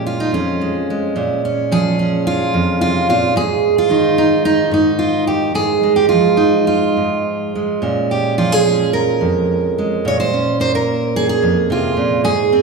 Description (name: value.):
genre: folk, solo fingerstyle acoustic guitar.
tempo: 109 BPM.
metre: 4/4.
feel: rubato.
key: unclear.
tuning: A4 = 440 Hz.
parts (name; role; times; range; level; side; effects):
fingerpicked steel-string acoustic guitar; solo; 0.0-12.6 s; F2 to Db5; -14 LUFS; right 2 dB; none.
room: wet recital hall reverb, RT60 1.7 s.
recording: recorded in a church or concert hall, small room ambience.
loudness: -14 LUFS.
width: side -4 dB against mid.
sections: 0.0-12.6 A section.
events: none.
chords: 0.0 Bbm7; 3.4 Ab5; 7.8 Bbm7.